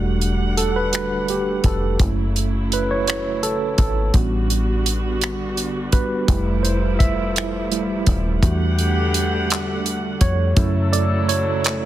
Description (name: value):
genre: slow six-eight R&B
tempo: 56 BPM (dotted quarters)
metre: 6/8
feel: straight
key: E dorian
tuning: A4 = 440 Hz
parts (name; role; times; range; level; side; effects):
- tine electric piano; accompaniment; 0.0-11.9 s; C#3 to E5; -23 LUFS; right 2 dB; medium stereo tremolo
- warm studio string section; sustained chords; 0.0-11.9 s; C#3 to F#5; -28 LUFS; right 1 dB; none
- deep dub fingered electric bass; bass; 0.0-11.9 s; D#1 to F#2; -22 LUFS; equal; none
- damped 70s drum kit; drums; 0.2-11.8 s; finger snaps, handclaps, hi-hat, kick drum; -19 LUFS; equal; soft clipping on snare
- clear horn section; stabs; 8.4-11.9 s; D3 to A4; -28 LUFS; left 6 dB; none
room: small room ambience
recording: dense, heavily limited modern master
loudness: -18 LUFS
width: side -13 dB against mid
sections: 0.0-11.9 A section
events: tine electric piano solo 0.0-11.9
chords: 0.0 Em11; 2.0 F#m7; 4.1 A13sus4; 6.3 Fmaj9; 8.4 Em11; 10.6 F#m7